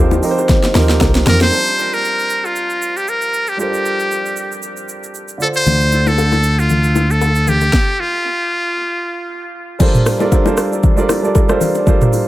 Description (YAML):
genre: amapiano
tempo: 116 BPM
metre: 4/4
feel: swing 55% on 16ths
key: G minor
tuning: A4 = 439 Hz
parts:
  - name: warm grand piano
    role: accompaniment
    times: 0.0-12.3 s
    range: D3 to A5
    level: -19 LUFS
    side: right 2 dB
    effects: dub echo
  - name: woody log drum bass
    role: bass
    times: 0.0-1.5 s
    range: C2 to F2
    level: -14 LUFS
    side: equal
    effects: none
  - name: afro-pop drum kit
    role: drums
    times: 0.1-12.3 s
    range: crash cymbal, hi-hat, kick drum, rim click, shaker, snare drum, toms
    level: -16 LUFS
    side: equal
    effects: none
  - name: bongos and congas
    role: percussion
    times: 0.1-1.5, 5.7-12.3 s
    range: none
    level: -22 LUFS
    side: left 6 dB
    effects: dub echo
  - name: trumpet with metal mute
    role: melody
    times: 1.3-9.5 s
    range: F4 to C5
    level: -17 LUFS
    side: equal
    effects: dub echo
  - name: fingered electric bass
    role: bass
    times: 5.7-7.7 s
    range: D2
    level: -14 LUFS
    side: equal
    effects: none
room: digital ambience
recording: echo-heavy mix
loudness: -12 LUFS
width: side -15 dB against mid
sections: 0.0-1.5 A section; 1.5-9.8 B section; 9.8-12.3 C section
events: drop 0.0-1.5; drum fill 0.5-1.5; stop 7.7-9.8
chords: 0.0 F9sus4; 1.5 Gm11; 5.4 Dm7; 9.8 Gm11